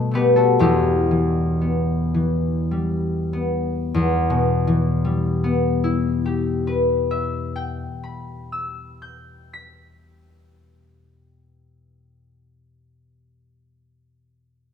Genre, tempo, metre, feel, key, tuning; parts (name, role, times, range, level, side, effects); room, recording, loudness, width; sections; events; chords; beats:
classical, solo harp piece; 31-44 BPM (dotted quarters); 6/8; rubato; E minor; A4 = 437 Hz
concert harp; solo; 0.0-12.3 s; E1 to B6; -19 LUFS; left 2 dB
wet recital hall reverb, RT60 1.4 s; minimal, uncompressed stereo recording; -18 LUFS; side -7 dB against mid
0.0-3.9 A section; 3.9-10.8 B section
slowing down 0.0-3.9
0.0 B7; 0.6 Em
| 0.61 2.14 | 3.94 5.67 | 7.36 9.08